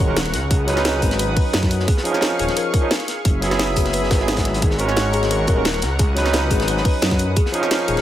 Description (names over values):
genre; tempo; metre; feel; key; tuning
liquid drum and bass; 175 BPM; 4/4; straight; G# minor; A4 = 440 Hz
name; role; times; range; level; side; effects
barky tine electric piano; accompaniment; 0.0-8.0 s; E#3 to C#5; -22 LUFS; right 1 dB; auto-pan, digital delay
lush unison pad; sustained chords; 0.0-8.0 s; G#4 to D#6; -27 LUFS; equal; chorus, sidechain pumping
thumb-piano-like synth pluck; arpeggios; 0.0-8.0 s; G#4 to B4; -29 LUFS; left 3 dB; chorus, digital delay
swelling detuned saw bass; bass; 0.0-8.0 s; D#1 to F#2; -22 LUFS; equal; none
impact; sound effects; 0.3-0.5 s; none; barely audible; none; none
crunchy breakbeat drum kit; drums; 0.2-8.0 s; hi-hat, snare drum; -28 LUFS; equal; high-pass filter on hats, high-pass filter on snare, high-pass filter on room
garage drum kit; drums; 0.2-8.0 s; hi-hat, snare drum; -24 LUFS; equal; none
electronic kick drum; drums; 0.5-7.4 s; none; -19 LUFS; equal; none
room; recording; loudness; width
light reverb, small room reverb; none; -16 LUFS; side -12 dB against mid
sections
0.0-8.0 A section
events
impact 0.0-0.5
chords
0.0 G#9sus4; 0.5 C#9sus4; 1.9 D#9sus4; 3.3 F#9sus4; 4.6 G#9sus4; 6.0 C#9sus4; 7.4 D#9sus4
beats
0.17 | 0.51 0.85 1.20 1.54 | 1.88 2.22 2.57 2.91 | 3.25 3.60 3.94 4.28 | 4.62 4.97 5.31 5.65 | 6.00 6.34 6.68 7.02 | 7.37 7.71